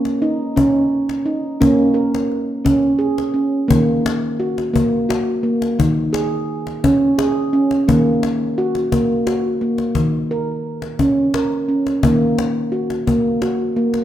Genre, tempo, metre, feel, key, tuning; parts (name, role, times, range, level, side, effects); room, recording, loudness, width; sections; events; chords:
world meditative, meditative tuned percussion; 58 BPM (dotted quarters); 6/8; straight; Eb minor pentatonic; A4 = 440 Hz
handpan; arpeggios; 0.0-14.0 s; Eb3 to Bb4; -16 LUFS; right 1 dB
cajon; percussion; 0.1-14.0 s; -23 LUFS; left 5 dB
wet recital hall reverb, RT60 1.6 s, small room reverb; -15 LUFS; side -11 dB against mid
0.0-3.7 A section; 3.7-14.0 B section
0.0 Bbm; 3.7 Ebm; 5.8 Db5/Eb; 7.9 Ebm; 10.0 Bbm/Eb; 12.0 Ebm